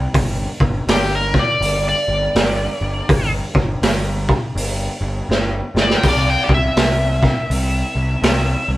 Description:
blues rock power trio and southern rock; 82 BPM; 4/4; swing 62% on 8ths; A4 = 439 Hz
fuzz picked electric bass; bass; 0.0-8.8 s; G1 to C2; -21 LUFS; equal; overdrive
raw garage drum kit; drums; 0.1-8.5 s; hi-hat, kick drum, snare drum, splash cymbal; -18 LUFS; equal
overdriven slide guitar; melody; 0.9-8.7 s; G4 to G5; -20 LUFS; equal
light reverb; band playing live in one room; -15 LUFS; side -16 dB against mid
0.0-8.8 A section
electric slide guitar solo 0.0-8.8; drum fill 5.3-6.0
0.1 G5; 6.0 C
| 0.15 0.89 1.62 2.36 | 3.10 3.83 4.57 5.31 | 6.04 6.78 7.51 8.25

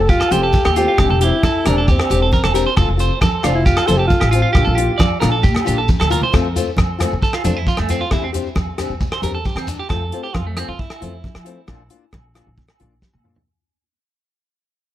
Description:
highlife guitar band; 135 BPM; 4/4; straight; F major; A4 = 440 Hz
breathy alto saxophone; melody; 0.0-5.2 s; C4 to A4; -20 LUFS; equal; tape echo
upright bass; bass; 0.0-13.3 s; E1 to F3; -20 LUFS; equal
electric guitar at the edge of break-up; arpeggios; 0.1-12.1 s; A3 to D5; -22 LUFS; right 5 dB; tape echo
warm soul drum kit; drums; 0.1-13.5 s; hi-hat, kick drum, rim click, snare drum, toms; -19 LUFS; equal
congas; percussion; 0.1-13.1 s; -24 LUFS; right 2 dB
shekere; percussion; 0.1-9.8 s; -27 LUFS; left 1 dB
agogo bells; percussion; 0.2-13.2 s; -28 LUFS; right 1 dB
nylon-string guitar; accompaniment; 0.3-13.4 s; E3 to G4; -24 LUFS; left 8 dB
small room reverb; -14 LUFS; side -13 dB against mid
0.0-6.3 A section; 6.3-13.5 B section
drum fill 6.0-6.3, 13.0-13.5; fade-out 6.3-13.5; clean electric guitar solo 6.3-13.5
0.0 F; 1.0 Cadd9/E; 2.8 F; 4.6 Bb; 6.3 F; 8.1 Cadd9/E; 9.9 F; 11.7 Bb
0.09 0.54 | 0.99 1.43 1.88 2.33 | 2.77 3.22 3.66 4.11 | 4.55 5.00 5.44 5.89 | 6.33 6.78 7.22 7.67 | 8.12 8.56 9.01 9.45 | 9.90 10.34 10.79 11.23 | 11.68 12.13 12.57 13.02

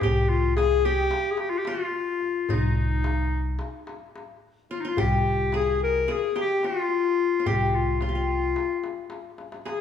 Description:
Turkish makam ensemble; 218 BPM (eighths); 9/8; straight; C makam ussak; A4 = 440 Hz
bright clarinet; melody; 0.0-9.8 s; Eb4 to Bb4; -25 LUFS; left 5 dB
qanun; second line; 0.0-9.8 s; C4 to Ab4; -31 LUFS; equal
upright bass; bass; 0.0-8.5 s; C2; -27 LUFS; equal
darbuka; percussion; 0.0-9.8 s; -31 LUFS; left 1 dB
moderate recital hall reverb, RT60 1.3 s; small room ambience; -22 LUFS; side -8 dB against mid
0.0-9.8 A section
drum fill 9.4-9.8
| 0.02 0.29 0.57 0.84 1.12 1.40 1.67 1.95 2.22 | 2.50 2.77 3.05 3.32 3.60 3.87 4.15 4.42 4.70 | 4.97 5.25 5.53 5.80 6.08 6.35 6.63 6.90 7.18 | 7.45 7.73 8.01 8.28 8.56 8.83 9.11 9.38 9.66

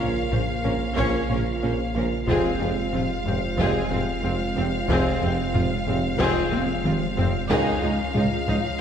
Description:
cinematic, hybrid orchestral and electronic film score; 92 BPM; 4/4; straight; A4 = 440 Hz
rich symphonic violin section; melody; 0.0-8.8 s; F5; -31 LUFS; left 2 dB
rich symphonic violin section; second line; 0.0-8.6 s; C4 to Db5; -32 LUFS; left 2 dB
rich symphonic viola section; accompaniment; 0.0-8.6 s; C4 to Eb4; -32 LUFS; left 1 dB
hollow soft pad; sustained chords; 0.0-8.8 s; Db3 to Eb5; -30 LUFS; right 2 dB; chorus
tight sequenced synth; arpeggios; 0.0-8.7 s; Db3 to F4; -34 LUFS; equal
pure sine sub bass; bass; 0.0-8.8 s; F1 to Db2; -34 LUFS; left 1 dB
rich symphonic cello section; bass; 0.0-8.6 s; Db2 to Bb2; -31 LUFS; right 2 dB
rich symphonic double bass section; bass; 0.0-8.6 s; F1 to Db2; -31 LUFS; right 3 dB
warm tuba; bass; 0.0-8.6 s; F1 to Db2; -31 LUFS; right 2 dB
taiko ensemble; drums; 0.3-8.8 s; -30 LUFS; left 1 dB
clear trombone section; sustained chords; 1.0-8.8 s; C3 to Bb3; -36 LUFS; right 2 dB
dark French horn section; sustained chords; 1.0-7.7 s; C4 to F4; -33 LUFS; left 2 dB
wet scoring stage reverb, RT60 2.0 s; heard from further back in the room; -21 LUFS; side -8 dB against mid
0.0-8.8 A section
drum fill 6.5-7.5
0.0 Bbm; 2.3 Fm; 7.5 Dbadd9
0.33 0.98 1.63 | 2.28 2.94 3.59 4.24 | 4.89 5.54 6.20 6.85 | 7.50 8.15 8.81

